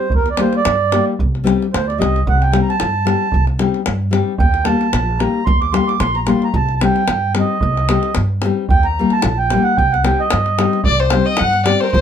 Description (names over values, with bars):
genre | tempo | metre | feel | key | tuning
balkan folk, Balkan wedding band | 112 BPM | 2/4 | swing 55% on 16ths | C dorian sharp4 | A4 = 439 Hz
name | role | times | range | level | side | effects
mellow accordion | second line | 0.0-12.0 s | Bb4 to D6 | -18 LUFS | right 5 dB | none
nylon-string guitar | accompaniment | 0.0-11.9 s | G3 to G4 | -18 LUFS | left 6 dB | none
upright bass | bass | 0.1-12.0 s | Bb1 to G2 | -19 LUFS | equal | none
davul | percussion | 0.1-12.0 s | none | -20 LUFS | equal | none
rich fiddle | melody | 10.9-12.0 s | Bb4 to F#5 | -16 LUFS | left 4 dB | none
room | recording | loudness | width
moderate small room reverb, RT60 0.5 s | none | -13 LUFS | side -8 dB against mid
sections
0.0-10.9 A section; 10.9-12.0 B section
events
accordion solo 0.0-10.9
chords
0.1 Eb; 1.2 Cm; 4.4 Eb; 6.5 Cm; 8.7 Eb; 9.8 Cm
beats
| 0.11 0.65 | 1.19 1.73 | 2.26 2.80 | 3.33 3.87 | 4.41 4.94 | 5.48 6.01 | 6.55 7.09 | 7.62 8.16 | 8.70 9.24 | 9.78 10.32 | 10.85 11.39 | 11.93